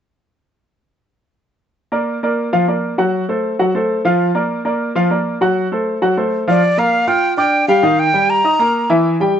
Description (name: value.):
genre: latin.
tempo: 198 BPM.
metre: 4/4.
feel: straight.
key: G minor.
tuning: A4 = 442 Hz.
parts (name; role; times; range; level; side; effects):
clear grand piano; accompaniment; 1.9-9.4 s; Eb3 to F6; -15 LUFS; equal; none.
breathy bright jazz flute; melody; 6.5-8.9 s; D5 to Bb5; -14 LUFS; equal; plate reverb.
room: moderate studio reverb, RT60 0.7 s.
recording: dark, warm production, nothing above 8.0 kHz.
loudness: -14 LUFS.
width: side -9 dB against mid.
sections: 1.8-6.6 A section; 6.6-9.4 B section.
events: none.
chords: 1.8 Bb; 3.0 F#dim; 4.2 Bb/F; 5.4 D7#9 (rootless); 6.6 Gm7; 7.8 Eb.